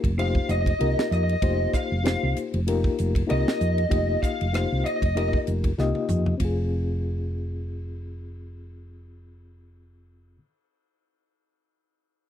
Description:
electric jazz fusion; 96 BPM; 4/4; swing 56% on 16ths; F minor; A4 = 440 Hz
mellow reed electric piano; accompaniment; 0.0-10.4 s; Bb3 to Eb5; -29 LUFS; left 6 dB; fast tremolo
hollow-body short-scale fingered electric bass; bass; 0.0-10.4 s; F1 to F2; -26 LUFS; right 1 dB
tight funk drum kit; drums; 0.0-6.6 s; hi-hat, kick drum, ride cymbal, rim click, snare drum, toms; -27 LUFS; right 1 dB
lead guitar through a small cranked amp; melody; 0.2-5.4 s; Eb5 to F5; -27 LUFS; right 1 dB; overdrive, slapback echo
little or no reverb; dry, close 1970s-style studio recording; -22 LUFS; side -10 dB against mid
0.0-6.4 A section; 6.4-8.9 B section
lead electric guitar solo 0.0-6.4; drum fill 5.8-6.4
0.0 F9sus4; 6.4 Fm

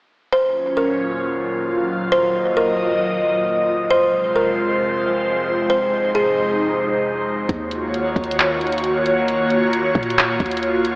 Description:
hip hop, atmospheric cloud-rap; 134 BPM; 4/4; half-time; Eb dorian; A4 = 439 Hz
buzzing kalimba; melody; 0.3-6.6 s; Ab4 to C5; -20 LUFS; equal; analog delay
airy breathy pad; sustained chords; 0.6-11.0 s; Eb2 to Eb5; -19 LUFS; equal; chorus, phaser, sidechain pumping
clean 808-style bass; bass; 7.5-11.0 s; Eb2 to Bb2; -28 LUFS; equal
smooth R&B drum kit; drums; 7.5-11.0 s; handclaps, hi-hat, kick drum; -22 LUFS; equal
wet cathedral reverb, RT60 4.4 s; dreamy mix soaked in reverb, AM radio sound; -17 LUFS; side -26 dB against mid
0.3-7.5 A section; 7.5-11.0 B section
0.3 Ebm7; 3.9 Fm; 7.5 Ebm7

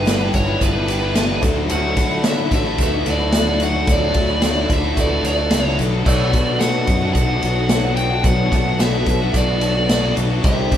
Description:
folk rock and heartland rock; 110 BPM; 4/4; straight; A4 = 440 Hz
biting lead guitar; melody; 0.0-10.8 s; B4 to G5; -22 LUFS; right 1 dB; overdrive
overdriven reed electric piano; accompaniment; 0.0-10.8 s; D4 to E5; -30 LUFS; right 7 dB; fast tremolo
picked twelve-string acoustic guitar; accompaniment; 0.0-10.8 s; G2 to G4; -26 LUFS; left 6 dB
crunchy overdriven guitar; riff; 0.0-10.8 s; G2 to G4; -24 LUFS; equal
fingered electric bass; bass; 0.0-10.8 s; G1 to D3; -22 LUFS; equal
vintage drum kit; drums; 0.1-10.8 s; crash cymbal, kick drum, ride cymbal, snare drum; -20 LUFS; equal
tube shaker; percussion; 0.1-10.8 s; -36 LUFS; right 5 dB
moderate large studio reverb, RT60 1.1 s; band playing live in one room, lossy compression artefacts; -15 LUFS; side -10 dB against mid
0.0-10.8 A section
0.0 G6; 1.4 Dadd9; 6.1 Bm7

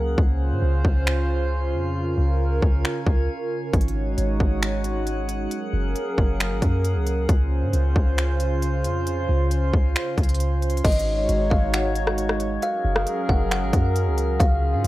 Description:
hip hop, atmospheric cloud-rap; 135 BPM; 4/4; half-time; Db major; A4 = 440 Hz
hollow soft pad; sustained chords; 0.0-14.9 s; Db3 to Db5; -27 LUFS; right 1 dB; chorus, sidechain pumping
warm 808-style bass; bass; 0.0-14.9 s; Gb1 to Ab2; -23 LUFS; equal
drifting glass-harmonics texture; texture; 0.0-14.9 s; Ab3 to Gb5; -34 LUFS; right 2 dB; chorus, built-in reverb
trap drum kit; drums; 0.2-14.9 s; crash cymbal, finger snaps, hi-hat, kick drum, rim click; -23 LUFS; equal
kalimba; melody; 10.8-14.9 s; Eb5 to Gb5; -26 LUFS; left 1 dB; tape echo
little or no reverb; echo-heavy mix; -20 LUFS; side -16 dB against mid
0.0-10.8 A section; 10.8-14.9 B section
break 0.0-3.7
0.2 Dbmaj7; 3.7 Ab7sus4; 5.5 Gbadd9; 7.3 Dbmaj7; 10.8 Ab7sus4; 12.6 Gbadd9

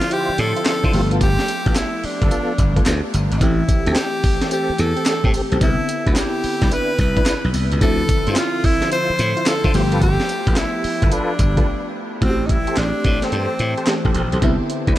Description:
R&B, new jack swing; 109 BPM; 4/4; swing 65% on 16ths; A4 = 440 Hz
bright tenor saxophone; melody; 0.0-14.2 s; C4 to C5; -23 LUFS; equal; tape echo
FM electric piano with soft pad layer; accompaniment; 0.0-15.0 s; D3 to G4; -25 LUFS; equal; chorus
tonewheel organ; stabs; 0.0-15.0 s; B3 to C5; -27 LUFS; equal; chorus vibrato, slow rotary speaker, tape echo
breakbeat sampler-style drum kit; drums; 0.0-15.0 s; handclaps, hi-hat, kick drum, snare drum, tambourine; -20 LUFS; equal; vintage 12-bit sampler grit
slap bass; bass; 0.3-14.9 s; G1 to D3; -20 LUFS; equal
light reverb, digital ambience; -16 LUFS; side -14 dB against mid
0.0-12.2 A section; 12.2-15.0 B section
break 11.7-12.2
0.0 Dm9; 0.9 G9; 3.4 Am7; 5.6 Cmaj9; 7.8 Dm9; 9.7 G9; 12.2 Am7; 14.4 Cmaj9

